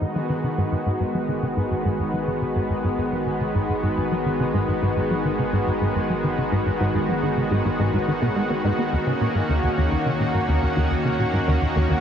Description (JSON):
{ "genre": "ambient, sequencer-driven space music", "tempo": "106 BPM", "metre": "4/4", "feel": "straight", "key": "G# minor", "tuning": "A4 = 440 Hz", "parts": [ { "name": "lush unison pad", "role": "sustained chords", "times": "0.0-12.0 s", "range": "D#3 to F#4", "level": "-23 LUFS", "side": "equal", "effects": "chorus" }, { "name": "tight sequencer bass", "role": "riff", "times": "0.0-11.9 s", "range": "D#2 to B3", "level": "-23 LUFS", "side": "equal", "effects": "analog chorus, analog delay" }, { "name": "warm sub bass", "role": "bass", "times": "0.0-12.0 s", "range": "G#1 to D#2", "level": "-40 LUFS", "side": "equal", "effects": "none" }, { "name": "wind-like tuned noise texture", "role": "texture", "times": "1.7-12.0 s", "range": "C#5", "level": "-43 LUFS", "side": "right 3 dB", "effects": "none" } ], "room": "wet huge ambient reverb, RT60 9.3 s", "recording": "dark, warm production", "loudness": "-20 LUFS", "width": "side -8 dB against mid", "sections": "0.0-12.0 A section", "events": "filter sweep on analog synth bass 0.0-12.0", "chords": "0.0 G#m7; 8.9 D#m7" }